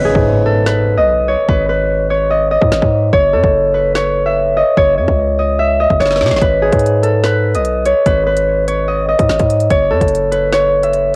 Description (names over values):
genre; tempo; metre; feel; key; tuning
hip hop, drill; 146 BPM; 4/4; half-time; G# phrygian; A4 = 444 Hz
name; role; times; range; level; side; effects
Celtic harp; melody; 0.0-11.2 s; G#4 to E5; -15 LUFS; equal; cassette tape
distorted 808-style bass; bass; 0.0-11.2 s; F#1 to C#3; -20 LUFS; equal; distortion
impact; sound effects; 0.0-1.5 s; none; -28 LUFS; equal; none
drill drum kit; drums; 0.1-11.0 s; hi-hat, kick drum, snare drum; -20 LUFS; equal; none
room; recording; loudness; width
digital ambience; home recording on cassette; -13 LUFS; mono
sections
0.0-11.2 A section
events
break 0.0-6.4; impact 0.0-1.5; drum fill 6.0-6.4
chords
0.0 G#m; 3.1 F#5; 6.4 G#m; 9.7 F#5